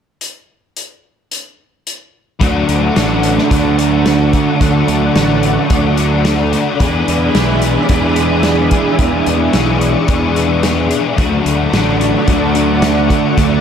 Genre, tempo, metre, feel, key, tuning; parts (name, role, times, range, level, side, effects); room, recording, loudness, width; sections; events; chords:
rock, shoegaze and dream pop; 110 BPM; 4/4; straight; D lydian; A4 = 439 Hz
loose indie drum kit; drums; 0.2-13.5 s; hi-hat, kick drum, snare drum; -18 LUFS; equal
analog string pad; sustained chords; 2.7-13.6 s; G#4 to C#6; -21 LUFS; right 1 dB; ensemble chorus
biting overdriven guitar; riff; 2.4-13.6 s; D3 to G#4; -16 LUFS; left 7 dB; ensemble chorus
biting overdriven guitar; riff; 2.4-13.6 s; E2 to F#4; -17 LUFS; right 8 dB; reverse reverb
fuzz picked electric bass; bass; 2.4-13.6 s; A1 to E2; -17 LUFS; equal; overdrive
moderate plate reverb, RT60 2.2 s; dreamy mix soaked in reverb; -11 LUFS; side -8 dB against mid
0.2-2.4 A section; 2.4-13.6 B section
0.2 N.C.; 2.4 Dmaj7; 6.8 E7; 11.2 Dmaj7